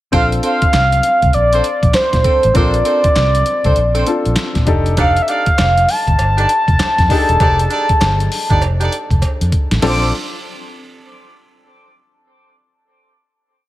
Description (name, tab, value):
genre	R&B, new jack swing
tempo	99 BPM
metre	4/4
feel	swing 62% on 16ths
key	Bb major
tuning	A4 = 441 Hz
part	mellow horn-like synth lead	melody	0.1-10.1 s	C5 to D6	-15 LUFS	equal	chorus
part	clear baby grand piano	accompaniment	0.1-10.1 s	C4 to Bb4	-23 LUFS	left 3 dB	none
part	warm horn section	stabs	0.1-10.1 s	C4 to D5	-23 LUFS	right 2 dB	none
part	vintage muted fingered electric bass	bass	0.1-10.1 s	E1 to Bb2	-16 LUFS	equal	none
part	boom bap sampler-style drum kit	drums	0.1-10.0 s	crash cymbal, handclaps, hi-hat, kick drum, snare drum	-17 LUFS	equal	gated reverb
part	cowbell	percussion	5.0-10.1 s	none	-31 LUFS	right 5 dB	none
room	light reverb, studio ambience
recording	none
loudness	-12 LUFS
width	side -15 dB against mid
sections	0.1-9.8 verse; 9.8-12.2 final chord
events	drum fill 9.2-9.8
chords	0.1 Bbmaj9; 4.7 F13; 9.8 Bbmaj9